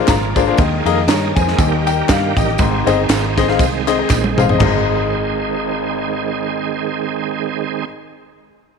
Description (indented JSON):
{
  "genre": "uptempo gospel",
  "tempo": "119 BPM",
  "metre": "4/4",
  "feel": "swing 55% on 8ths",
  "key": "Ab major",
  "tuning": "A4 = 439 Hz",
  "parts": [
    { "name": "clear baby grand piano", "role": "accompaniment", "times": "0.0-7.9 s", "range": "Ab1 to Bb5", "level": "-19 LUFS", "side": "left 11 dB", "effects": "none" },
    { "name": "bright tonewheel organ", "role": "sustained chords", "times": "0.0-7.9 s", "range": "Eb3 to Ab4", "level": "-21 LUFS", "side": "right 13 dB", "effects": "slow rotary speaker, chorus vibrato" },
    { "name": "fingered electric bass", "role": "bass", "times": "0.1-7.8 s", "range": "G1 to G2", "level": "-21 LUFS", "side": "right 2 dB", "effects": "none" },
    { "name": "crisp fusion drum kit", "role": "drums", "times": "0.1-4.7 s", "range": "china cymbal, kick drum, ride cymbal, snare drum, toms", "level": "-18 LUFS", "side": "right 2 dB", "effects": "none" },
    { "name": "handclaps and tambourine", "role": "percussion", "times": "0.1-4.9 s", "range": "none", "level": "-30 LUFS", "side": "left 2 dB", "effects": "none" }
  ],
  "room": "light reverb, small room ambience",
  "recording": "1960s-style stereo with parts hard left and right",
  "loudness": "-14 LUFS",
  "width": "side -5 dB against mid",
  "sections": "0.0-4.6 A section; 4.6-8.6 B section",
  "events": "grand piano fill 0.0-0.6; drum fill 4.1-4.6",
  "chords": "0.0 Bb7; 0.6 Ebsus4; 1.6 Eb; 2.6 Ab",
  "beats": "0.09 | 0.59 1.09 1.59 2.09 | 2.59 3.09 3.60 4.10 | 4.60 5.10 5.61 6.11 | 6.61 7.12 7.62"
}